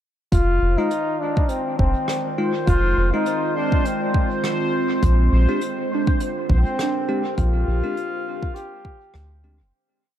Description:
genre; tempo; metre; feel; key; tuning
ambient dub; 102 BPM; 4/4; swing 56% on 16ths; F dorian; A4 = 440 Hz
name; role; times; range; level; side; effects
warm trombone; melody; 0.3-9.4 s; C4 to G4; -25 LUFS; left 1 dB; dub echo
warbly tape-like pad; sustained chords; 1.1-9.7 s; D3 to C5; -26 LUFS; right 2 dB; chorus, built-in reverb, phaser
soft dub sub bass; bass; 0.3-9.7 s; F1 to D2; -18 LUFS; equal; none
electronic kick drum; drums; 0.3-9.0 s; none; -20 LUFS; equal; none
vintage brush drum kit; drums; 0.3-9.3 s; hi-hat, rim click; -36 LUFS; right 2 dB; dub echo
bubbling stepped-filter texture; texture; 0.3-9.7 s; C5; -31 LUFS; equal; chorus, built-in reverb
bell-like tine electric piano; stabs; 0.8-9.6 s; Ab3 to G4; -29 LUFS; left 2 dB; dub echo
soft synth bell; arpeggios; 5.9-9.8 s; D4; -30 LUFS; right 3 dB; chorus, phaser, tape echo
room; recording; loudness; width
light reverb; echo-heavy mix; -18 LUFS; side -11 dB against mid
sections
0.3-9.7 groove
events
fade-out 6.6-9.7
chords
0.3 Fm7; 5.0 Bb13

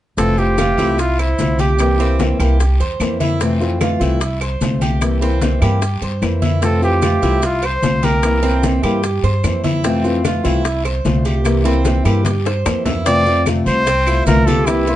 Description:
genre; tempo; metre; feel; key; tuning
latin, Cuban son and guajira; 149 BPM; 4/4; straight; F major; A4 = 441 Hz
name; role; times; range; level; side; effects
warm trumpet; melody; 0.2-2.2, 6.6-8.6, 13.1-15.0 s; E4 to D5; -18 LUFS; right 1 dB; plate reverb
fingerpicked acoustic archtop guitar; accompaniment; 0.2-15.0 s; C3 to F4; -20 LUFS; left 3 dB; none
Cuban tres; arpeggios; 0.2-15.0 s; C4 to C5; -23 LUFS; right 4 dB; none
upright bass; bass; 0.2-15.0 s; F1 to G2; -18 LUFS; equal; none
bongos; percussion; 0.2-15.0 s; none; -26 LUFS; left 6 dB; none
congas; percussion; 0.2-15.0 s; none; -22 LUFS; left 3 dB; none
guiro; percussion; 0.2-15.0 s; none; -33 LUFS; left 4 dB; none
maracas; percussion; 0.2-15.0 s; none; -35 LUFS; right 6 dB; none
claves; percussion; 0.6-14.9 s; none; -30 LUFS; right 2 dB; none
room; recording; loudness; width
moderate studio reverb, RT60 0.6 s; dark, warm production, nothing above 10.9 kHz; -14 LUFS; side -13 dB against mid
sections
0.2-13.1 A section; 13.1-15.0 B section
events
drum fill 12.3-13.1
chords
0.2 Fmaj7; 1.8 C7; 3.4 Fmaj7; 5.0 C7; 6.6 Fmaj7; 8.2 C7; 9.8 Fmaj7; 11.5 C7; 13.1 Fmaj7

